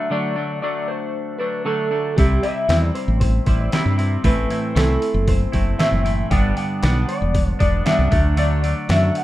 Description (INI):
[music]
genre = indie rock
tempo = 116 BPM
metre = 4/4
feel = straight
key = C lydian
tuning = A4 = 440 Hz
[part]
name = electric guitar through a small old amp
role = melody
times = 0.0-9.2 s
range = G4 to G5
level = -24 LUFS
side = left 1 dB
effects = tremolo, slapback echo
[part]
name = crunchy overdriven guitar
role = riff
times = 0.0-9.2 s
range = G2 to E4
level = -23 LUFS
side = right 1 dB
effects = spring reverb
[part]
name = woody fretless electric bass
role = bass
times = 2.2-9.1 s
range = E1 to G2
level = -19 LUFS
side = equal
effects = none
[part]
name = trip hop sampler-style drum kit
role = drums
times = 2.2-9.2 s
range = hi-hat, kick drum, snare drum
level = -22 LUFS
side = equal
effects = overdrive
[sound]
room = little or no reverb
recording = rough home demo mix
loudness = -17 LUFS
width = side -15 dB against mid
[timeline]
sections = 0.0-9.2 A section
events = none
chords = 0.0 D; 2.2 C; 4.2 Am; 6.3 G; 8.1 D